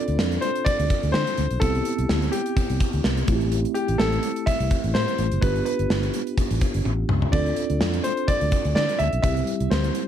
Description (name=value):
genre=1980s-style pop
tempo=126 BPM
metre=4/4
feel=swing 55% on 16ths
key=D dorian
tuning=A4 = 440 Hz
part: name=clear concert grand piano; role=melody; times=0.0-10.1 s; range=G4 to E5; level=-27 LUFS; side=equal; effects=slapback echo
part: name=mellow tine electric piano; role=accompaniment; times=0.0-10.1 s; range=G3 to A4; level=-28 LUFS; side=right 1 dB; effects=medium stereo tremolo
part: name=fretless electric bass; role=bass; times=0.1-9.9 s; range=F#1 to D3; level=-24 LUFS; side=equal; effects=none
part: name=gated 80s drum kit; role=drums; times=0.1-10.1 s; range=hi-hat, kick drum, snare drum, splash cymbal, toms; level=-24 LUFS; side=equal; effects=none
room=light reverb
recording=none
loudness=-20 LUFS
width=side -10 dB against mid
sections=0.0-10.1 A section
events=drum fill 6.9-7.3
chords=0.0 Dm7; 1.6 Cmaj7; 3.3 Am7; 5.4 G7; 7.3 Dm7; 9.2 C